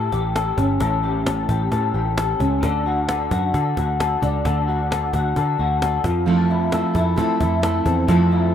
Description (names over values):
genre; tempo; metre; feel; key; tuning
jangly indie pop; 132 BPM; 4/4; straight; unclear; A4 = 439 Hz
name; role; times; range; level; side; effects
electric guitar through a small old amp; arpeggios; 0.0-8.5 s; A2 to A4; -20 LUFS; left 2 dB; ensemble chorus
vintage muted picked electric bass; bass; 0.0-8.5 s; G1 to F3; -23 LUFS; equal; tube saturation
cajon; drums; 0.1-8.4 s; none; -27 LUFS; equal; none
picked steel-string acoustic guitar; accompaniment; 6.3-8.5 s; F3 to A4; -22 LUFS; right 6 dB; none
room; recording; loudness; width
studio reverb; rough home demo mix; -18 LUFS; side -9 dB against mid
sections
0.0-8.5 A section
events
none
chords
0.0 A7; 2.6 D; 6.0 Fmaj7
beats
0.35 | 0.80 1.26 1.72 2.17 | 2.63 3.08 3.54 3.99 | 4.45 4.91 5.36 5.82 | 6.27 6.73 7.18 7.64 | 8.09